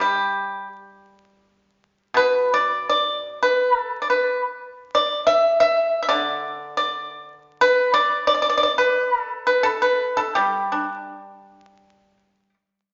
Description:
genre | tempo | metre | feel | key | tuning
chinese traditional, Chinese solo plucked strings | 88 BPM | 4/4 | uneven beats, rubato | G gong mode | A4 = 441 Hz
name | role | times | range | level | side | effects
pipa | solo | 0.0-12.5 s | B2 to E5 | -21 LUFS | equal | none
room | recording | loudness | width
wet large studio reverb, RT60 1.3 s | vinyl crackle, nothing above 7.5 kHz | -21 LUFS | mono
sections
0.0-12.9 A section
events
none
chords
none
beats
0.02 0.72 1.44 | 2.17 2.88 3.58 4.26 | 4.93 5.60 6.28 6.95 | 7.62 8.30 8.98 9.67 | 10.37 11.08 11.80

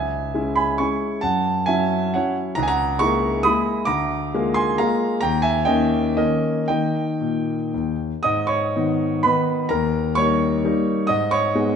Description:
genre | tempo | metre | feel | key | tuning
classical, romantic triple-time dance for piano with dotted rhythms | 110-145 BPM | 3/4 | rubato | G# minor | A4 = 441 Hz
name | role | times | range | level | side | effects
warm grand piano | solo | 0.0-11.8 s | C#2 to D#6 | -18 LUFS | equal | none
room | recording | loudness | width
wet recital hall reverb, RT60 1.5 s | minimal, uncompressed stereo recording | -18 LUFS | side -7 dB against mid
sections
0.0-8.2 A section; 8.2-11.8 B section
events
none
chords
0.0 C#m; 1.2 F#m7; 2.6 A#m7b5/C#; 3.9 A#7/D; 5.2 D#7; 6.7 D#; 8.2 G#m; 9.7 D#7; 11.1 G#m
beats
0.34 0.80 | 1.23 1.68 2.15 | 2.57 3.00 3.45 | 3.88 4.33 4.78 | 5.22 5.67 6.18 | 6.69 7.21 7.73 | 8.24 8.73 9.24 | 9.70 10.17 10.64 | 11.10 11.55

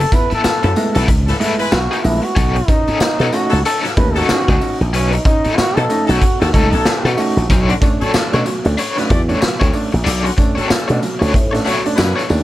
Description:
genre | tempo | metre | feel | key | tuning
funk | 94 BPM | 4/4 | swing 60% on 16ths | unclear | A4 = 440 Hz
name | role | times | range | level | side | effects
bright trombone | melody | 0.0-7.5 s | C#4 to B4 | -19 LUFS | equal | tube saturation, slapback echo, plate reverb
biting overdriven guitar | accompaniment | 0.0-12.3 s | B3 to D5 | -22 LUFS | left 4 dB | tremolo, plate reverb
slap bass with an envelope filter | bass | 0.0-12.4 s | A#1 to B2 | -16 LUFS | equal | none
raw garage drum kit | drums | 0.0-12.4 s | hi-hat, kick drum, snare drum | -18 LUFS | equal | none
clear upright piano | stabs | 0.1-12.4 s | B2 to E4 | -21 LUFS | right 2 dB | none
tambourine | percussion | 0.1-12.4 s | none | -34 LUFS | left 5 dB | none
clear horn section | second line | 0.6-12.2 s | D3 to D5 | -23 LUFS | left 2 dB | plate reverb
room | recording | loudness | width
light reverb | none | -13 LUFS | side -15 dB against mid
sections
0.0-7.5 A section; 7.5-12.4 B section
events
trombone solo 0.0-7.5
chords
0.0 F#m11 (rootless); 2.4 B9; 7.5 Bm9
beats
0.44 1.08 1.73 | 2.37 3.01 3.65 4.29 | 4.93 5.57 6.21 6.85 | 7.49 8.13 8.78 9.41 | 10.05 10.70 11.33 11.97

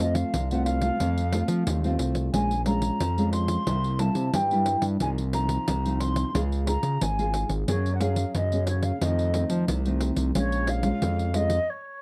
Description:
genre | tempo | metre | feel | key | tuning
samba and choro | 90 BPM | 4/4 | straight | unclear | A4 = 440 Hz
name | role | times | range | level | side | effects
baroque flute | melody | 0.0-12.0 s | Db5 to C6 | -32 LUFS | equal | none
nylon-string guitar | accompaniment | 0.0-11.7 s | F2 to Ab4 | -31 LUFS | equal | none
smooth synth bass | bass | 0.0-11.6 s | Ab1 to F3 | -29 LUFS | equal | none
pandeiro | percussion | 0.1-11.7 s | none | -34 LUFS | equal | none
room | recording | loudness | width
light reverb | dry, close 1970s-style studio recording | -26 LUFS | mono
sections
0.0-12.0 A section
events
stop 11.7-12.0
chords
0.0 F; 2.3 Bbm7; 3.7 C7; 5.0 F7sus4/C; 6.3 Db6; 7.7 Gbadd9; 9.0 F7; 10.4 Bbm7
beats
0.34 1.00 1.67 | 2.34 3.01 3.67 4.34 | 5.01 5.68 6.35 7.01 | 7.68 8.35 9.02 9.69 | 10.36 11.02 11.69

